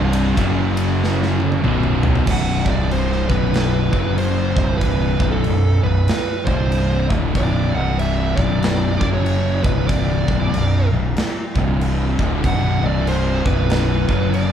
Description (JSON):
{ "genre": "stoner and doom metal", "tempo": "95 BPM", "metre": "4/4", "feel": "swing 61% on 8ths", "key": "B minor", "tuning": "A4 = 441 Hz", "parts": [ { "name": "distorted electric guitar", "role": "riff", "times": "0.0-2.3 s", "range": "B1 to F#3", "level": "-24 LUFS", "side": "right 3 dB", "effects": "distortion" }, { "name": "thick fuzz guitar", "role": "riff", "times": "0.0-14.5 s", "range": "B1 to F#3", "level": "-21 LUFS", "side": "left 5 dB", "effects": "distortion" }, { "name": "thick fuzz guitar", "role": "riff", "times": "0.0-14.5 s", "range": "B1 to F#3", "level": "-25 LUFS", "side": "right 5 dB", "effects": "distortion" }, { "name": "fuzz fingered electric bass", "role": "bass", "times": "0.0-14.5 s", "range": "B0 to F#1", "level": "-21 LUFS", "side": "equal", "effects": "overdrive" }, { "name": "big rock drum kit", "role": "drums", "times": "0.1-14.5 s", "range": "crash cymbal, kick drum, ride cymbal, snare drum, toms", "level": "-22 LUFS", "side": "right 1 dB", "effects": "none" }, { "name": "fuzz lead guitar", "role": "melody", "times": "2.3-14.5 s", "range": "A4 to F#5", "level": "-25 LUFS", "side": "right 5 dB", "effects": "distortion" } ], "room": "moderate large studio reverb, RT60 1.1 s", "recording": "band playing live in one room", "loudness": "-16 LUFS", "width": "side -9 dB against mid", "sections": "0.0-2.3 A section; 2.3-14.5 B section", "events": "drum fill 1.0-2.3", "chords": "0.4 F#5; 1.6 B5; 2.6 C5; 3.2 B5; 3.9 F#5; 4.5 C5; 5.1 B5; 6.4 C5; 7.0 Bm; 7.7 C5; 8.3 Bm; 8.9 F#5; 9.6 C5; 10.2 Bm; 11.5 C5; 12.1 Bm; 12.7 C5; 13.4 B5; 14.0 F#5" }